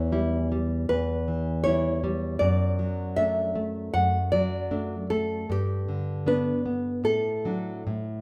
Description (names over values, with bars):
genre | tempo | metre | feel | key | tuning
romantic duo for nylon-string guitar and classical guitar | 78 BPM | 4/4 | rubato | D major | A4 = 436 Hz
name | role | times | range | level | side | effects
nylon-string guitar | melody | 0.0-8.2 s | G4 to F#5 | -30 LUFS | equal | none
nylon-string guitar | accompaniment | 0.0-8.2 s | E2 to E4 | -29 LUFS | equal | none
room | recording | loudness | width
moderate recital hall reverb, RT60 1.6 s | none | -27 LUFS | mono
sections
0.0-8.2 A section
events
none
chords
0.0 C#dim/E; 2.4 D/F#; 5.5 G; 7.1 D/A